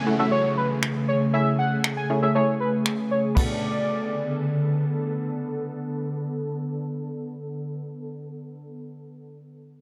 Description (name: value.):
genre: dance-pop.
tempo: 118 BPM.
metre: 4/4.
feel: straight.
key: B dorian.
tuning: A4 = 440 Hz.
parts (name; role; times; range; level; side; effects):
octave-doubled lead; melody; 0.0-4.9 s; B4 to G#5; -29 LUFS; equal; chorus, sidechain pumping, low-pass filter, tape echo.
ethereal airy pad; sustained chords; 0.0-7.8 s; C#3 to A4; -29 LUFS; equal; ensemble chorus, built-in reverb, sidechain pumping, low-pass filter.
downlifter; sound effects; 0.0-3.4 s; none; -37 LUFS; equal; none.
punchy chord stab; accompaniment; 0.1-7.8 s; A3 to A4; -30 LUFS; equal; chorus, sidechain pumping, low-pass filter.
jazz brush drum kit; drums; 0.8-3.5 s; finger snaps, kick drum, ride cymbal; -28 LUFS; equal; none.
room: light reverb, studio ambience.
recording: dry, gritty hardware recording.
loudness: -25 LUFS.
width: mono.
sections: 0.0-3.4 A section; 3.4-7.4 B section.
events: filter sweep 0.0-3.4.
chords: 0.0 Amaj7; 3.4 Bm7.